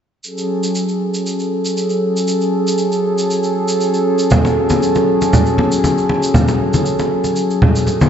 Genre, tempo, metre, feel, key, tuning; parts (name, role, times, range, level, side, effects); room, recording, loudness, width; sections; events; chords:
afro house; 118 BPM; 4/4; swing 53% on 16ths; F# minor; A4 = 438 Hz
warm analog pad; sustained chords; 0.2-8.1 s; F#3 to A4; -15 LUFS; equal; chorus
egg shaker; percussion; 0.2-8.1 s; -27 LUFS; right 2 dB
congas; percussion; 4.3-8.1 s; -15 LUFS; equal
wet lush hall reverb, RT60 2.3 s; dark, warm production, nothing above 7.9 kHz; -13 LUFS; side -8 dB against mid
0.2-8.1 A section
0.2 F#m